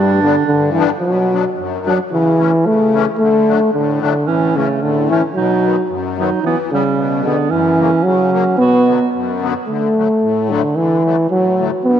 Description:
alpine folk, alpine dance band; 111 BPM; 2/4; straight; B minor; A4 = 440 Hz
mellow euphonium; melody; 0.0-12.0 s; C#3 to B3; -14 LUFS; right 1 dB; tape echo
clear clarinet; second line; 0.0-0.7, 4.3-9.1 s; G3 to F#4; -21 LUFS; right 10 dB
musette accordion; accompaniment; 0.0-12.0 s; F#2 to D4; -20 LUFS; left 9 dB
moderate plate reverb, RT60 2.7 s; 1960s-style stereo with parts hard left and right; -13 LUFS; side -9 dB against mid
0.0-1.0 A section; 1.0-9.7 B section; 9.7-12.0 C section
0.0 G; 1.0 Bm; 2.1 A/C#; 3.2 D; 4.3 A; 5.4 B; 6.4 Em; 7.5 F#7; 8.6 Bm; 9.7 Dadd9

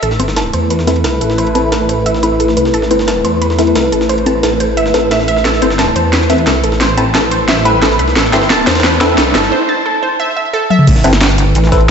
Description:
dark technical drum and bass; 177 BPM; 4/4; straight; A minor; A4 = 440 Hz
sweeping resonant pad; sustained chords; 0.0-11.9 s; A3 to B4; -17 LUFS; left 1 dB; chorus, sidechain pumping
analog pluck; arpeggios; 0.0-10.8 s; A4 to A5; -16 LUFS; right 2 dB; chorus, sidechain pumping, tape echo
phased detuned saw bass; bass; 0.0-11.0 s; G1 to E2; -17 LUFS; equal; phaser, overdrive
breakbeat sampler-style drum kit; drums; 0.0-11.9 s; ride cymbal, snare drum; -22 LUFS; equal; high-pass filter on cymbals, low-pass filter on cymbals, high-pass filter on snare, low-pass filter on snare
drum and bass drum kit; drums; 0.0-11.8 s; cabasa, crash cymbal, hi-hat, snare drum, toms; -15 LUFS; equal; overdrive
band-passed chord stab; stabs; 0.2-11.8 s; C4 to B4; -18 LUFS; left 1 dB; phaser, tape echo
riser; sound effects; 7.3-9.5 s; -21 LUFS; right 1 dB
electronic kick drum; drums; 10.9-11.8 s; -10 LUFS; equal; overdrive
pulsing pluck wobble bass; bass; 11.0-11.9 s; G1 to A1; -11 LUFS; equal; chorus, tube saturation
wet lush hall reverb, RT60 1.9 s; dreamy mix soaked in reverb, nothing above 7.9 kHz; -10 LUFS; side -6 dB against mid
0.0-10.9 A section; 10.9-11.9 B section
build-up 0.0-10.9; filter sweep on synth arpeggio sound 0.0-10.9; filter sweep on synth stab 0.0-10.9; drum fill 5.5-9.5, 10.7; break 9.5-10.9; drop 10.9-11.9
0.0 Amadd9

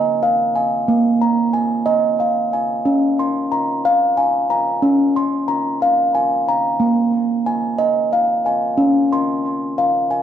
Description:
world meditative, meditative tuned percussion; 61 BPM (dotted quarters); 6/8; straight; Db major; A4 = 441 Hz
steel tongue drum; solo; 0.0-10.2 s; Bb3 to C6; -15 LUFS; equal; diffuse ambient delay
wet echo chamber reverb, RT60 1.4 s; cassette tape; -15 LUFS; side -9 dB against mid
0.0-10.2 A section
0.0 Bb5; 2.9 Db; 6.8 Bb5; 8.8 Db

